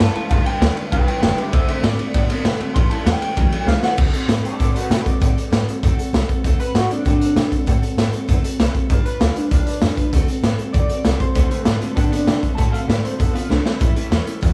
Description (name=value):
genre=rockabilly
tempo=195 BPM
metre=4/4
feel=straight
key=D mixolydian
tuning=A4 = 440 Hz
part: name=electric guitar through a small old amp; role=melody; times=0.0-14.2 s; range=D4 to C6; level=-27 LUFS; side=equal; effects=analog chorus, analog delay
part: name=picked steel-string acoustic guitar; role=accompaniment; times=0.0-14.5 s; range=A2 to B4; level=-30 LUFS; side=equal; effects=none
part: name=electric guitar through a small old amp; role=riff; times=0.0-4.0, 11.4-14.5 s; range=G2 to B3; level=-30 LUFS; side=equal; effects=vibrato effect
part: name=upright bass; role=bass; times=0.0-14.5 s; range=F1 to C3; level=-24 LUFS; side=equal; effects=none
part: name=raw garage drum kit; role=drums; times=0.0-14.5 s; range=crash cymbal, hi-hat, kick drum, ride cymbal, snare drum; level=-21 LUFS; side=equal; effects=none
room=light reverb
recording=none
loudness=-19 LUFS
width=mono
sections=0.0-4.0 A section; 4.0-14.5 B section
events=clean electric guitar solo 0.0-4.0; drum fill 3.7-4.0, 13.5-13.8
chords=0.3 G7; 1.5 D7; 2.8 A7; 4.0 D7; 8.9 G7; 10.1 D7; 13.8 A7